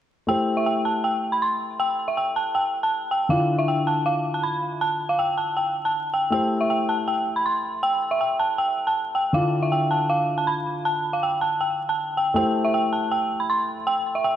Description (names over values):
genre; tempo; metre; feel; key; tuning
hip hop; 159 BPM; 4/4; half-time; A minor; A4 = 440 Hz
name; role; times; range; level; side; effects
dark detuned synth bell; melody; 0.3-14.4 s; E5 to C6; -22 LUFS; right 1 dB; chorus, low-pass filter, tape echo
dark concert grand piano; accompaniment; 0.3-14.4 s; D3 to C5; -27 LUFS; left 2 dB; low-pass filter
room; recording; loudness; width
moderate lush hall reverb, RT60 2.4 s; dark, warm production, vinyl crackle; -21 LUFS; side -10 dB against mid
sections
0.3-12.4 A section; 12.4-14.4 B section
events
none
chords
0.3 Am7; 3.3 Dmadd9; 6.3 Am7; 9.3 Dmadd9; 12.4 Am7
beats
| 0.28 0.66 1.04 1.42 | 1.79 2.17 2.55 2.92 | 3.30 3.68 4.06 4.43 | 4.81 5.19 5.57 5.94 | 6.32 6.70 7.08 7.45 | 7.83 8.21 8.59 8.96 | 9.34 9.72 10.10 10.47 | 10.85 11.23 11.60 11.98 | 12.36 12.74 13.11 13.49 | 13.87 14.25